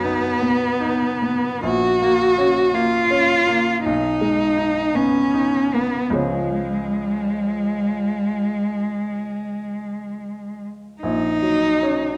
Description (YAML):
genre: classical, romantic duo for cello and grand piano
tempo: 47-56 BPM (dotted quarters)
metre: 12/8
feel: rubato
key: F# major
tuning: A4 = 440 Hz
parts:
  - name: rich cello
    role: melody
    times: 0.0-12.2 s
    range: G#3 to F#4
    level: -22 LUFS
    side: equal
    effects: none
  - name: bright baby grand piano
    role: accompaniment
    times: 0.0-12.2 s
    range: A#1 to D#4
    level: -26 LUFS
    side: equal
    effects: none
room: wet recital hall reverb, RT60 1.4 s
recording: dark, warm production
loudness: -20 LUFS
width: mono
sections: 0.0-12.2 A section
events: none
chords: 0.0 B; 1.6 F#/A#; 3.9 G#m/B; 6.2 C#; 11.0 F#/A#